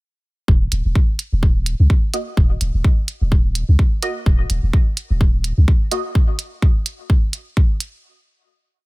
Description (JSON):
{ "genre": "minimal techno", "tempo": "127 BPM", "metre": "4/4", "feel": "swing 56% on 16ths", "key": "Eb minor", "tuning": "A4 = 438 Hz", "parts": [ { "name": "punchy sub bass", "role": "bass", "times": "0.5-5.7 s", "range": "Eb1 to Db2", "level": "-17 LUFS", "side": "equal", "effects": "sidechain pumping" }, { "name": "electronic kick drum", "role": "drums", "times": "0.5-7.7 s", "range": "none", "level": "-14 LUFS", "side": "equal", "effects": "none" }, { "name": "electronic hi-hat", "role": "drums", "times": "0.7-7.9 s", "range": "none", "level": "-26 LUFS", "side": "right 3 dB", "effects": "none" }, { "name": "filtered dub chord stab", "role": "stabs", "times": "2.1-6.0 s", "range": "Bb3 to Eb5", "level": "-28 LUFS", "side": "right 1 dB", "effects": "lush chorus, ping-pong delay" } ], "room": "little or no reverb", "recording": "none", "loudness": "-15 LUFS", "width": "side -23 dB against mid", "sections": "0.5-8.0 groove", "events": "none", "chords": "none", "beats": "| 0.48 0.95 1.43 1.90 | 2.37 2.85 3.32 3.79 | 4.26 4.74 5.21 5.68 | 6.15 6.62 7.10 7.57" }